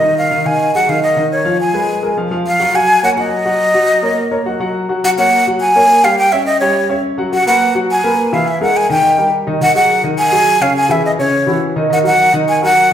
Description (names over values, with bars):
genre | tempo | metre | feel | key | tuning
jazz | 210 BPM | 4/4 | straight | Eb minor, F# major from 5.0 s | A4 = 440 Hz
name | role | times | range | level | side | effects
breathy jazz flute | melody | 0.0-12.9 s | Db5 to G#5 | -12 LUFS | equal | none
warm baby grand piano | accompaniment | 0.0-12.9 s | C#3 to G5 | -16 LUFS | equal | none
room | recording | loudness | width
wet large studio reverb, RT60 1.4 s | band playing live in one room | -11 LUFS | side -9 dB against mid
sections
0.0-5.0 A section; 5.0-12.9 B section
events
none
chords
0.5 Ab5; 1.6 Fdim; 2.2 N.C.; 2.7 Ebm7; 5.0 F#add9; 6.2 Em69; 7.3 B5; 8.5 F#13; 9.0 D#; 9.6 G#5; 10.8 C#m; 11.3 F#5; 11.9 D#m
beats
0.17 | 0.45 0.74 1.02 1.31 | 1.60 1.88 2.17 2.46 | 2.74 3.03 3.32 3.60 | 3.89 4.18 4.46 4.75 | 5.04 5.32 5.61 5.89 | 6.18 6.47 6.75 7.04 | 7.32 7.61 7.90 8.18 | 8.47 8.76 9.04 9.33 | 9.61 9.90 10.19 10.47 | 10.76 11.04 11.33 11.62 | 11.90 12.19 12.47 12.76